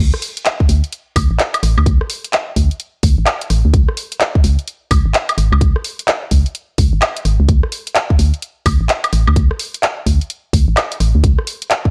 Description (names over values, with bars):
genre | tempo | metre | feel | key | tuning
UK garage, two-step garage | 128 BPM | 4/4 | swing 63% on 16ths | unclear | A4 = 441 Hz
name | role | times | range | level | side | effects
organ-like FM bass | bass | 0.0-11.4 s | G#1 to D2 | -16 LUFS | equal | none
house drum kit | drums | 0.1-11.8 s | handclaps, hi-hat, rim click, woodblock | -20 LUFS | equal | studio reverb
electronic kick drum | drums | 0.6-11.9 s | none | -16 LUFS | equal | studio reverb
room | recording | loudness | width
digital ambience | dry, gritty hardware recording, cassette tape | -16 LUFS | mono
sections
0.0-11.9 A section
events
none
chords
none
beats
0.46 0.92 1.39 | 1.86 2.33 2.80 3.27 | 3.74 4.21 4.67 5.14 | 5.61 6.08 6.55 7.02 | 7.49 7.96 8.42 8.89 | 9.36 9.83 10.30 10.77 | 11.24 11.71